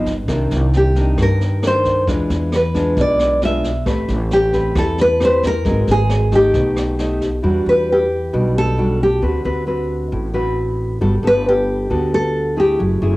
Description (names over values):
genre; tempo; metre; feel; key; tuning
bossa nova; 134 BPM; 4/4; straight; E minor from 7.4 s; A4 = 440 Hz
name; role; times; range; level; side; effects
nylon-string guitar; accompaniment; 0.0-13.2 s; G2 to B4; -21 LUFS; equal; cassette tape
upright bass; bass; 0.0-13.2 s; F#1 to G2; -20 LUFS; equal; none
jazz brush drum kit; drums; 0.1-7.3 s; kick drum, rim click, snare drum; -25 LUFS; equal; none
nylon-string guitar; melody; 0.8-12.8 s; G4 to E5; -17 LUFS; equal; cassette tape
room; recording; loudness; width
light reverb, studio reverb; home recording on cassette; -14 LUFS; side -19 dB against mid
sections
0.0-7.4 A section; 7.4-13.2 B section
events
nylon-string guitar solo 7.4-13.2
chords
0.3 Cm9; 2.1 E7b9; 3.9 Am9; 5.7 Ab9; 6.5 B7b13; 7.4 Em9; 9.2 D6; 11.0 Gmaj9